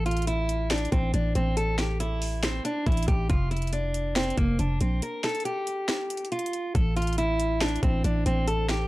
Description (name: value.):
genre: hip hop, trap.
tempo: 139 BPM.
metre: 4/4.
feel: half-time.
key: A phrygian.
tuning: A4 = 440 Hz.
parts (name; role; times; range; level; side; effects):
picked steel-string acoustic guitar; melody; 0.0-8.9 s; Bb3 to Bb4; -28 LUFS; equal; low-pass filter.
growling 808-style bass; bass; 0.0-8.9 s; F1 to Bb1; -26 LUFS; equal; none.
trap drum kit; drums; 0.1-8.8 s; finger snaps, hi-hat, kick drum, snare drum; -29 LUFS; equal; overdrive.
room: digital ambience.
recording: dark, warm production.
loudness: -24 LUFS.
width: side -18 dB against mid.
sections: 0.0-8.9 A section.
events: break 5.0-6.7.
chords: 0.0 A5; 3.3 Bbadd9/F (rootless); 5.0 N.C.; 6.7 A5.